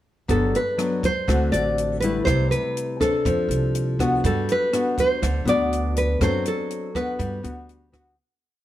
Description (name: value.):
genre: bossa nova.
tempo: 122 BPM.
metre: 4/4.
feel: straight.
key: G major.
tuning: A4 = 439 Hz.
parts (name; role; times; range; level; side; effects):
nylon-string guitar; melody; 0.3-7.9 s; A4 to D5; -24 LUFS; right 1 dB; none.
nylon-string guitar; accompaniment; 0.3-8.2 s; G2 to A4; -25 LUFS; left 3 dB; none.
upright bass; bass; 0.3-8.1 s; G1 to G2; -25 LUFS; right 1 dB; none.
compact cocktail drum kit; drums; 0.3-8.1 s; hi-hat, kick drum, rim click; -29 LUFS; right 1 dB; none.
room: light reverb.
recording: none.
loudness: -20 LUFS.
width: side -13 dB against mid.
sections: 0.3-8.2 A section.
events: fade-out 6.2-8.2.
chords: 0.3 Gmaj7; 1.3 D7; 2.3 C6; 3.3 F6; 4.2 Gmaj7; 6.2 D7/F#; 7.2 Gmaj7.